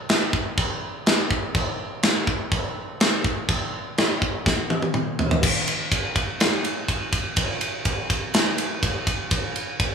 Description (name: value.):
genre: metal.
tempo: 124 BPM.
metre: 4/4.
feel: straight.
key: none.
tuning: none.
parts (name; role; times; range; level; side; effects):
tight metal drum kit; drums; 0.1-9.9 s; china cymbal, crash cymbal, kick drum, ride cymbal, snare drum, toms; -21 LUFS; equal; none.
room: light reverb.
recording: band playing live in one room, studio reverb.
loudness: -21 LUFS.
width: side -6 dB against mid.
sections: 0.0-5.4 A section; 5.4-9.9 B section.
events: drum fill 4.5-5.4; half time 5.4-9.9.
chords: none.